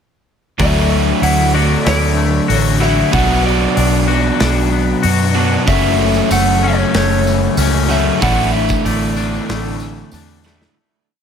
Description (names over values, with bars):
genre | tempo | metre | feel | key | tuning
rock, shoegaze and dream pop | 94 BPM | 4/4 | straight | D major | A4 = 440 Hz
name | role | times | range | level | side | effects
electric guitar at the edge of break-up | melody | 0.6-10.1 s | C#5 to F#5 | -20 LUFS | left 1 dB | digital delay
twangy electric guitar | arpeggios | 0.6-10.8 s | E3 to F#4 | -23 LUFS | left 10 dB | analog chorus, digital delay
crunchy overdriven guitar | riff | 0.6-10.8 s | F#2 to D4 | -22 LUFS | equal | none
overdriven semi-hollow guitar | riff | 0.6-10.8 s | F#2 to D4 | -20 LUFS | left 10 dB | ensemble chorus
overdriven semi-hollow guitar | riff | 0.6-10.8 s | F#2 to F#4 | -20 LUFS | right 11 dB | reverse reverb
vintage muted fingered electric bass | bass | 0.6-10.6 s | F#1 to F#2 | -17 LUFS | equal | none
big rock drum kit | drums | 0.6-10.8 s | hi-hat, kick drum, snare drum | -22 LUFS | equal | none
tambourine | percussion | 5.7-10.6 s | none | -33 LUFS | right 6 dB | none
room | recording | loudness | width
light reverb, small room ambience | none | -12 LUFS | side -7 dB against mid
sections
0.6-10.8 verse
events
fade-out 8.2-10.8; drum fill 10.4-10.8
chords
0.6 Dadd9; 3.1 Bm; 5.7 F#m7; 8.2 Asus4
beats
| 0.59 1.23 1.86 2.49 | 3.13 3.76 4.40 5.03 | 5.67 6.30 6.94 7.58 | 8.21 8.85 9.49 10.13